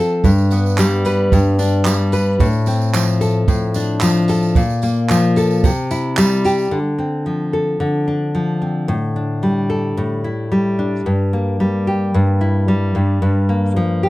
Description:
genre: acoustic pop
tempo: 111 BPM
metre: 4/4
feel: straight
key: D minor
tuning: A4 = 440 Hz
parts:
  - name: nylon-string guitar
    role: accompaniment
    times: 0.0-14.1 s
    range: G2 to B4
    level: -15 LUFS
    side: left 1 dB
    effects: none
  - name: compact cocktail drum kit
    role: drums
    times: 0.2-6.6 s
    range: handclaps, kick drum, tambourine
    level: -20 LUFS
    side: right 3 dB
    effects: none
  - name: tambourine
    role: percussion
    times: 0.3-6.7 s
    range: none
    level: -31 LUFS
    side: right 9 dB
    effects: none
room: little or no reverb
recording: close, detailed microphones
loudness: -14 LUFS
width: side -18 dB against mid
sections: 0.0-6.7 A section; 6.7-14.1 B section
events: none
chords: 0.2 G; 2.4 Dm7/A; 4.6 Bb5; 5.6 C; 6.7 Dm7; 8.9 A7sus4; 11.1 Edim/G; 12.9 Gm7

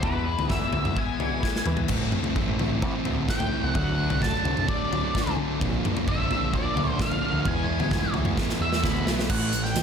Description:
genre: quiet-loud alternative rock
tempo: 130 BPM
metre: 4/4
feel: straight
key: A dorian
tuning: A4 = 440 Hz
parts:
  - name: octave-fuzz lead guitar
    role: melody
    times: 0.0-9.8 s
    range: B4 to B5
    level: -30 LUFS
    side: equal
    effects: distortion, slapback echo
  - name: twangy electric guitar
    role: arpeggios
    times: 0.0-1.9 s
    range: E2 to E3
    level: -35 LUFS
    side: equal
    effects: ensemble chorus, slapback echo
  - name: thick fuzz guitar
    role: riff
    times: 0.0-9.8 s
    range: A2 to E4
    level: -31 LUFS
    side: left 11 dB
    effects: distortion, slapback echo
  - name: growling picked electric bass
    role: bass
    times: 0.0-9.8 s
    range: A1 to E3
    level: -30 LUFS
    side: equal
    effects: overdrive
  - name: big rock drum kit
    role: drums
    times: 0.0-9.8 s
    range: crash cymbal, hi-hat, kick drum, snare drum, toms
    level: -27 LUFS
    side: equal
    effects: none
  - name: thick fuzz guitar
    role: riff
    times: 1.9-9.8 s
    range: A2 to E4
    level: -29 LUFS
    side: right 9 dB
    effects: distortion, slapback echo
room: moderate lush hall reverb, RT60 1.9 s, small room ambience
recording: big arena sound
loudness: -23 LUFS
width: side -7 dB against mid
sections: 0.0-9.3 A section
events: lead electric guitar solo 0.0-9.3; drum fill 1.4-1.9, 8.4-9.3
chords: 0.0 E; 1.9 Am; 3.8 D; 5.6 Bb; 7.5 E; 9.3 Am

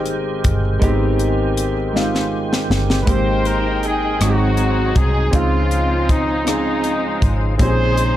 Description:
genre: slow gospel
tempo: 53 BPM (dotted quarters)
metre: 6/8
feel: straight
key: Ab major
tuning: A4 = 440 Hz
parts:
  - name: warm concert grand piano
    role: accompaniment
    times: 0.0-8.2 s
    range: Ab2 to Bb4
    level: -22 LUFS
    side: equal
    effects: none
  - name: tonewheel organ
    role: sustained chords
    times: 0.0-8.2 s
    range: Db3 to G5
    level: -25 LUFS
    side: right 2 dB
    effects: slow rotary speaker, chorus vibrato
  - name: vintage muted fingered electric bass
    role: bass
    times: 0.0-8.2 s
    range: G1 to Db2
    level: -20 LUFS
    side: equal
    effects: none
  - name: crisp fusion drum kit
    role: drums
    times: 0.1-8.1 s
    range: hi-hat, kick drum, rim click, snare drum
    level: -20 LUFS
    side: equal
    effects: none
  - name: clear trumpet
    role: melody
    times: 3.0-8.2 s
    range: Eb4 to C5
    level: -23 LUFS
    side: right 3 dB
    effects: none
  - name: muted studio string section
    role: melody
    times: 3.1-8.2 s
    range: Ab3 to G5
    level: -22 LUFS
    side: left 4 dB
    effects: none
room: studio ambience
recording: dark, warm production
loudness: -15 LUFS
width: side -12 dB against mid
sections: 0.0-3.1 A section; 3.1-8.2 B section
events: drum fill 1.9-3.1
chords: 0.0 Abmaj7; 3.1 Abmaj9; 4.2 Ab7; 5.3 Dbmaj9; 7.6 Bbm11

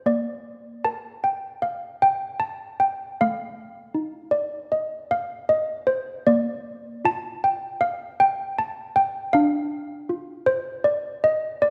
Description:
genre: classical, tune for handbells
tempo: 78 BPM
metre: 4/4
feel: straight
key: Bb major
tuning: A4 = 440 Hz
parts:
  - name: malleted handbells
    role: solo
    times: 0.0-11.7 s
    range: A3 to A5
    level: -24 LUFS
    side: equal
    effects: none
room: moderate concert hall reverb, RT60 1.9 s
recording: none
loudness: -25 LUFS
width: mono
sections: 0.0-11.7 A section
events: none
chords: 0.0 N.C.; 3.2 F7/A; 6.3 Bb; 9.4 Dm7

